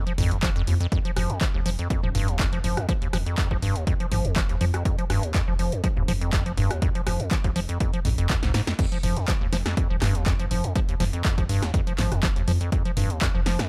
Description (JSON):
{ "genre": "acid house", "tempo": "122 BPM", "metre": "4/4", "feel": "swing 54% on 16ths", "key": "F minor", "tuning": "A4 = 440 Hz", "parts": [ { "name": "acid bass, square", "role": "riff", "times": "0.0-13.7 s", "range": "F1 to F3", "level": "-29 LUFS", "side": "equal", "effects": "tube saturation, sidechain pumping, analog delay" }, { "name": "punchy analog drum machine", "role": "drums", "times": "0.1-13.7 s", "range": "crash cymbal, handclaps, hi-hat, rim click, snare drum, toms", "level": "-33 LUFS", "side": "equal", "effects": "overdrive" }, { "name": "round analog bass", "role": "bass", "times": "0.2-13.6 s", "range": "Eb1 to F2", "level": "-29 LUFS", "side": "equal", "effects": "tube saturation, sidechain pumping" }, { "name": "electronic kick drum", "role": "drums", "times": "0.4-13.3 s", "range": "none", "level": "-28 LUFS", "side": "equal", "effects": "overdrive" } ], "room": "little or no reverb", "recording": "dry, gritty hardware recording", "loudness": "-24 LUFS", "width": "mono", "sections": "0.0-8.8 A section; 8.8-13.7 B section", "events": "drum fill 8.4-8.8; drop 8.8-13.7", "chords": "none", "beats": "0.43 | 0.92 1.41 1.90 2.40 | 2.89 3.38 3.87 4.36 | 4.85 5.35 5.84 6.33 | 6.82 7.31 7.80 8.30 | 8.79 9.28 9.77 10.26 | 10.76 11.25 11.74 12.23 | 12.72 13.21" }